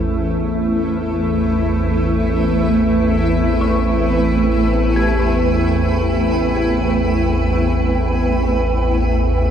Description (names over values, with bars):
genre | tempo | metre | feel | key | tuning
dark ambient drone | free time | none | none | A minor | A4 = 443 Hz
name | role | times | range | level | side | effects
granular cloud pad | sustained chords | 0.0-9.5 s | A3 to B4 | -18 LUFS | right 1 dB | built-in reverb
dark detuned synth bell | arpeggios | 0.0-9.5 s | C4 to G4 | -29 LUFS | left 3 dB | chorus, phaser, diffuse ambient delay
organ-like drone | drone | 0.0-9.5 s | A1 to E2 | -18 LUFS | equal | ensemble chorus, built-in reverb
wind-like tuned noise texture | texture | 0.0-9.5 s | C4 | -30 LUFS | right 5 dB | built-in reverb
room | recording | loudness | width
moderate huge ambient reverb, RT60 8.2 s | none | -15 LUFS | side -8 dB against mid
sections
0.0-9.5 A section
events
fade-in on synth texture 0.0-9.5; fade-out on synth bell 0.0-9.5; filter sweep on synth drone 0.0-9.5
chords
0.0 Amadd9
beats
free time